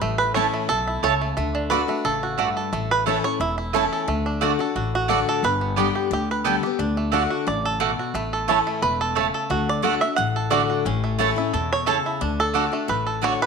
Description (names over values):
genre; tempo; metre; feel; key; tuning
bluegrass; 177 BPM; 4/4; swing 54% on 8ths; unclear; A4 = 438 Hz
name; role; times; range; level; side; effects
bluegrass banjo; melody; 0.0-13.5 s; A3 to F#5; -24 LUFS; right 4 dB; none
picked steel-string acoustic guitar; accompaniment; 0.0-13.5 s; E2 to G4; -26 LUFS; left 10 dB; none
upright bass; bass; 0.0-13.3 s; E1 to E2; -29 LUFS; equal; none
mandolin; stabs; 0.3-13.3 s; A3 to A5; -24 LUFS; right 8 dB; none
room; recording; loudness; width
moderate echo chamber reverb, RT60 1.3 s, small room ambience; 1960s-style stereo with parts hard left and right; -20 LUFS; side -5 dB against mid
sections
0.0-1.4 A section; 1.4-12.2 A section; 12.2-13.5 A section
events
five-string banjo solo 0.0-1.4, 1.4-13.5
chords
0.0 A; 1.4 D; 2.7 A; 4.1 D; 5.4 G; 6.8 D; 8.1 A; 9.5 D; 10.9 A; 12.2 D